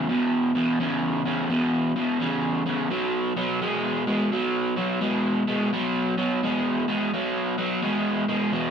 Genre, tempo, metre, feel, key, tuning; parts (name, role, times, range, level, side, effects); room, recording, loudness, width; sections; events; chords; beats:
rock; 85 BPM; 4/4; swing 65% on 8ths; A4 = 440 Hz
crunchy overdriven guitar; solo; 0.0-8.7 s; E2 to G#3; -22 LUFS; equal
wet large studio reverb, RT60 0.9 s; band playing live in one room, nothing above 10.3 kHz; -22 LUFS; side -7 dB against mid
0.0-8.7 A section
0.0 E5; 2.9 B5
| 0.10 0.80 1.50 2.21 | 2.91 3.61 4.32 5.02 | 5.72 6.42 7.13 7.83 | 8.53